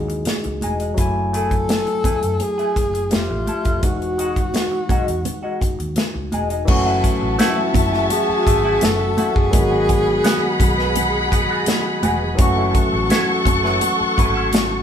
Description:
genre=lush 1970s-style soul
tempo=84 BPM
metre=4/4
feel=straight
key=F# dorian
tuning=A4 = 439 Hz
part: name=breathy tenor saxophone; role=melody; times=0.0-10.8 s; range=E4 to A4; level=-22 LUFS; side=equal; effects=none
part: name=barky tine electric piano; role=accompaniment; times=0.0-14.8 s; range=D#3 to G#5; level=-24 LUFS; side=left 1 dB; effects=overdrive
part: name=vintage muted fingered electric bass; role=bass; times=0.0-14.8 s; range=E1 to F#2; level=-26 LUFS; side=equal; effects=none
part: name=semi-hollow electric guitar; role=riff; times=0.1-14.8 s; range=G#3 to B4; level=-27 LUFS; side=equal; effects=wah
part: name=modern studio drum kit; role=drums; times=0.1-14.7 s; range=crash cymbal, hi-hat, kick drum, snare drum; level=-20 LUFS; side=equal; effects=none
part: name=congas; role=percussion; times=0.3-14.7 s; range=none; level=-27 LUFS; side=right 1 dB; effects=none
part: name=warm studio string section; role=second line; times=6.7-14.8 s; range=F#4 to C#6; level=-22 LUFS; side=left 1 dB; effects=none
part: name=percussive tonewheel organ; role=sustained chords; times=6.7-14.8 s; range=F#4 to C#6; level=-29 LUFS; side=equal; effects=stopped rotary speaker
room=wet stone room reverb, RT60 0.9 s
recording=band playing live in one room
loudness=-16 LUFS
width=side -8 dB against mid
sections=0.0-6.7 A section; 6.7-14.8 B section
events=none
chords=0.0 Emaj9; 1.0 F#m9; 3.1 Fmaj9; 3.8 Emaj9; 6.7 F#m7; 9.5 G#m7; 12.4 F#m7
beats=0.26 | 0.98 1.69 2.40 3.12 | 3.83 4.54 5.26 5.97 | 6.68 7.39 8.11 8.82 | 9.53 10.25 10.96 11.67 | 12.39 13.10 13.82 14.53

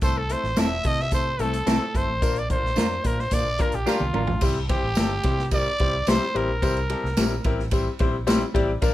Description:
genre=uptempo 1960s-style soul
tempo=109 BPM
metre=4/4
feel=straight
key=C mixolydian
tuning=A4 = 440 Hz
part: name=growling trumpet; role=melody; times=0.0-7.5 s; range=F4 to E5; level=-27 LUFS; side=equal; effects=plate reverb
part: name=clear concert grand piano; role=accompaniment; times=0.0-8.9 s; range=F3 to D5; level=-27 LUFS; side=left 4 dB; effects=none
part: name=vintage muted fingered electric bass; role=bass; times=0.0-8.9 s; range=G1 to C3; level=-28 LUFS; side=equal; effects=none
part: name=swinging big-band drum kit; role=drums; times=0.0-8.9 s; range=crash cymbal, hi-hat, kick drum, ride cymbal, snare drum, toms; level=-25 LUFS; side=equal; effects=none
part: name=tambourine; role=percussion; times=0.0-8.9 s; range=none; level=-38 LUFS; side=right 4 dB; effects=none
part: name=semi-hollow electric guitar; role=stabs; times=0.6-4.2 s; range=C4 to Bb4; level=-28 LUFS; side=right 5 dB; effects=slapback echo
room=light reverb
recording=none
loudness=-21 LUFS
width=side -14 dB against mid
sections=0.0-4.4 A section; 4.4-8.9 B section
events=trumpet solo 0.0-4.4; drum fill 3.9-4.4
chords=0.0 Am; 2.2 Bb; 4.4 C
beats=| 0.03 0.57 1.12 1.68 | 2.22 2.77 3.32 3.87 | 4.42 4.97 5.53 6.08 | 6.62 7.17 7.73 8.28 | 8.83

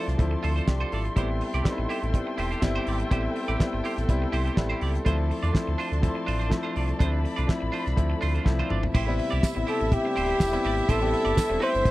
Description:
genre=disco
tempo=123 BPM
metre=4/4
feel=straight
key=A minor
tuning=A4 = 440 Hz
part: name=clear grand piano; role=accompaniment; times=0.0-11.9 s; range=F3 to A4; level=-30 LUFS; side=left 2 dB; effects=none
part: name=semi-hollow electric guitar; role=accompaniment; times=0.0-11.9 s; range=D4 to D5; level=-33 LUFS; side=right 5 dB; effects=lush chorus
part: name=dark studio string section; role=sustained chords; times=0.0-11.9 s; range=C3 to C6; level=-35 LUFS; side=left 1 dB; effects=none
part: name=sub bass with octave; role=bass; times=0.1-11.9 s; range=D1 to E2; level=-28 LUFS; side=equal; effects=none
part: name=damped 70s drum kit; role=drums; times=0.1-11.9 s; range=crash cymbal, hi-hat, kick drum, snare drum, toms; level=-24 LUFS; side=equal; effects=none
part: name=warm studio violin section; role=second line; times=8.9-11.9 s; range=E4 to E5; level=-32 LUFS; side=left 1 dB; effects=none
part: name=tambourine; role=percussion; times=9.4-11.5 s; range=none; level=-40 LUFS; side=right 11 dB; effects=none
part: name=breathy flugelhorn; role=melody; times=9.7-11.9 s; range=G4 to C5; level=-25 LUFS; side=equal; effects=none
room=little or no reverb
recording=dry, close 1970s-style studio recording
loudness=-23 LUFS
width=side -17 dB against mid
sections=0.0-8.9 A section; 8.9-11.9 B section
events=drum fill 8.5-8.9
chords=0.0 Dm7; 1.2 Am7; 5.1 Dm7; 8.9 Am7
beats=0.19 0.68 | 1.17 1.65 2.14 2.63 | 3.12 3.60 4.09 4.58 | 5.06 5.55 6.03 6.52 | 7.01 7.49 7.98 8.46 | 8.95 9.43 9.92 10.40 | 10.89 11.37 11.86

